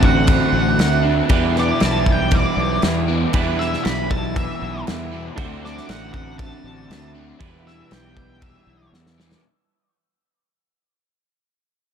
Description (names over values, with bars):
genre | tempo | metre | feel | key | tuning
rock, shoegaze and dream pop | 118 BPM | 4/4 | straight | E minor | A4 = 440 Hz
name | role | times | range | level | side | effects
octave-fuzz lead guitar | melody | 0.0-8.9 s | D5 to B5 | -26 LUFS | right 1 dB | distortion, analog delay
fingerpicked twelve-string acoustic guitar | arpeggios | 0.0-9.4 s | E3 to D4 | -29 LUFS | right 13 dB | lush chorus, analog delay
crunchy overdriven guitar | riff | 0.0-9.4 s | E2 to D4 | -26 LUFS | right 1 dB | phaser
raw garage guitar | riff | 0.0-9.4 s | D3 to F#4 | -27 LUFS | left 11 dB | overdrive, lush chorus
twelve-string electric guitar | riff | 0.0-9.4 s | D3 to C5 | -27 LUFS | right 10 dB | reverse reverb
fuzz fingered electric bass | bass | 0.0-9.3 s | A1 to E2 | -24 LUFS | equal | overdrive
loose indie drum kit | drums | 0.0-9.4 s | crash cymbal, kick drum, snare drum | -21 LUFS | equal | none
room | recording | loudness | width
small room ambience | none | -16 LUFS | side -8 dB against mid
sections
0.0-9.4 A section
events
fade-out 0.0-9.4; drum fill 8.9-9.4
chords
0.0 D7; 1.3 Em7; 5.4 D7; 7.4 Em7